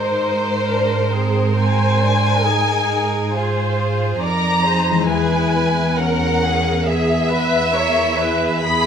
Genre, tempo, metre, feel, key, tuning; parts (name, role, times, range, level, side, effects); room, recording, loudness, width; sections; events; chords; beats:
cinematic; 68 BPM; 4/4; rubato; A4 = 440 Hz
warm studio violin section; melody; 0.0-8.9 s; C5 to B5; -20 LUFS; left 2 dB
rich studio violin section; second line; 0.0-8.9 s; B3 to B4; -24 LUFS; left 1 dB
rich studio viola section; accompaniment; 0.0-8.9 s; Ab4 to D5; -23 LUFS; right 2 dB
concert harp; arpeggios; 0.0-8.9 s; Ab2 to G#4; -25 LUFS; left 8 dB
rich studio cello section; bass; 0.0-8.9 s; E2 to Ab2; -21 LUFS; right 3 dB
moderate scoring stage reverb, RT60 1.7 s; close, detailed microphones; -15 LUFS; side -7 dB against mid
0.0-8.9 A section
0.0 Ab; 5.1 E
0.67 | 1.58 2.46 3.34 4.22 | 5.09 5.98 6.86 7.74 | 8.64